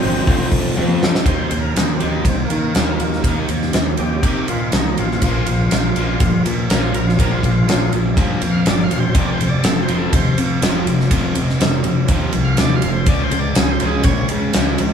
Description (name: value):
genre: classic rock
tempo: 122 BPM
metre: 4/4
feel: straight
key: unclear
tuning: A4 = 442 Hz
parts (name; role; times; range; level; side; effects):
- overdriven tonewheel organ; melody; 0.0-14.3 s; Bb3 to F5; -25 LUFS; equal; slow rotary speaker
- distorted electric guitar; riff; 0.0-14.9 s; F2 to F4; -20 LUFS; equal; distortion
- fuzz picked electric bass; bass; 0.0-14.9 s; E1 to Eb3; -23 LUFS; equal; overdrive
- big rock drum kit; drums; 0.0-14.9 s; hi-hat, kick drum, ride cymbal, snare drum, toms; -18 LUFS; equal; none
room: moderate large studio reverb, RT60 0.8 s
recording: band playing live in one room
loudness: -15 LUFS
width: side -7 dB against mid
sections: 0.0-1.3 A section; 1.3-14.9 B section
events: drum fill 0.8-1.3; tonewheel organ solo 1.3-14.9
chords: 0.3 F; 1.3 Eb; 5.2 Bb5; 9.2 F5; 13.1 Db5